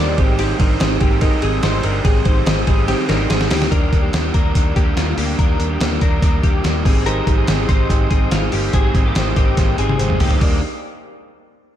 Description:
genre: jangly indie pop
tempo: 143 BPM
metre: 4/4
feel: straight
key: Eb major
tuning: A4 = 439 Hz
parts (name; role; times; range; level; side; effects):
- crunchy overdriven guitar; accompaniment; 0.0-10.6 s; Ab2 to Eb4; -24 LUFS; right 5 dB; slapback echo
- dark upright piano; accompaniment; 0.0-3.7, 7.0-10.6 s; Eb4 to Eb5; -26 LUFS; right 5 dB; slapback echo
- direct-recorded clean electric guitar; arpeggios; 0.0-10.6 s; Ab3 to D5; -23 LUFS; left 6 dB; analog chorus, analog delay
- vintage muted fingered electric bass; bass; 0.0-10.6 s; G1 to Eb2; -21 LUFS; equal; none
- lo-fi sampler-style drum kit; drums; 0.2-10.5 s; hi-hat, kick drum, ride cymbal, snare drum, toms; -17 LUFS; equal; overdrive
room: light reverb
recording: none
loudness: -14 LUFS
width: side -11 dB against mid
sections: 0.0-3.7 A section; 3.7-10.4 B section; 10.4-11.8 C section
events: drum fill 2.9-3.7, 9.6-10.4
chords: 0.2 Abmaj7; 3.7 Ebmaj7; 6.9 Abmaj7; 10.4 Ebmaj7

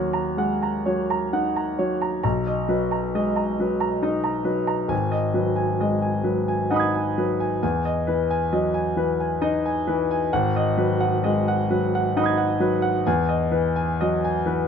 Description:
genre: classical, impressionist solo piano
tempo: 67 BPM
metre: 3/4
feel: uneven beats, rubato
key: unclear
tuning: A4 = 439 Hz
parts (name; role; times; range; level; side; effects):
- clear concert grand piano; solo; 0.0-14.7 s; Ab1 to Ab6; -20 LUFS; equal; none
room: light reverb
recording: minimal, uncompressed stereo recording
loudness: -20 LUFS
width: side -7 dB against mid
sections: 0.0-14.7 A section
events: none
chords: 0.0 Ebm7; 2.2 Bmaj7; 4.9 Abm7; 7.6 Emaj7; 10.3 Abm7; 13.0 Emaj7

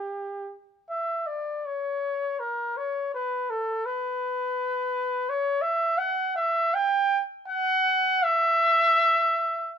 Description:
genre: classical, free, expressive piece for unaccompanied trumpet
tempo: 82 BPM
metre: 3/4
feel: uneven beats, rubato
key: B minor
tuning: A4 = 445 Hz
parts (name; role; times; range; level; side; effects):
- warm trumpet; solo; 0.0-9.8 s; G4 to G5; -23 LUFS; equal; none
room: light reverb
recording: none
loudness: -23 LUFS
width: side -8 dB against mid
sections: 0.0-9.8 A section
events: none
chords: none

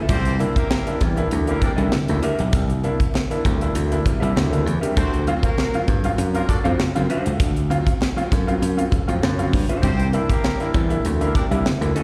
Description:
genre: funk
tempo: 99 BPM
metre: 4/4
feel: straight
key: unclear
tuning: A4 = 440 Hz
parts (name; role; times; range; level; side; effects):
- hollow-body jazz guitar; accompaniment; 0.0-12.0 s; B3 to E#5; -30 LUFS; equal; slapback echo
- clear horn section; second line; 0.1-11.4 s; Bb3 to D5; -32 LUFS; equal; slapback echo
- bright upright piano; stabs; 0.1-11.9 s; C3 to E#4; -28 LUFS; equal; slapback echo
- slap bass; bass; 0.1-11.9 s; B1 to G2; -24 LUFS; equal; none
- tight funk drum kit; drums; 0.1-12.0 s; hi-hat, kick drum, snare drum; -24 LUFS; equal; none
- congas; percussion; 0.1-11.9 s; none; -32 LUFS; equal; none
room: light reverb, small room ambience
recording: live gig heard through the venue's PA, recital hall reverb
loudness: -20 LUFS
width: mono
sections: 0.1-12.0 A section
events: none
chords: 0.1 C9; 5.0 D7#9; 9.8 C9

